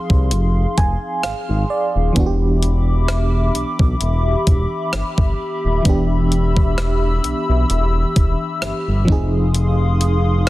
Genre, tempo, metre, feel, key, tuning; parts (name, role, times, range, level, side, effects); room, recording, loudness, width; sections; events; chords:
contemporary R&B; 65 BPM; 4/4; swing 54% on 16ths; E minor; A4 = 440 Hz
FM electric piano with tremolo; accompaniment; 0.0-10.5 s; E3 to Ab5; -23 LUFS; right 2 dB
hollow soft pad; sustained chords; 0.0-10.5 s; G4 to E6; -24 LUFS; left 2 dB; chorus
smooth synth bass; bass; 0.1-10.5 s; Eb1 to C2; -18 LUFS; equal
crisp 8-bit digital drum machine; drums; 0.1-10.5 s; hi-hat, kick drum, rim click; -18 LUFS; equal
digital ambience; dense, heavily limited modern master; -15 LUFS; side -17 dB against mid
0.0-10.5 A section
FM electric piano fill 0.3-2.2
0.0 Fm7; 2.2 Em7; 9.1 Fm7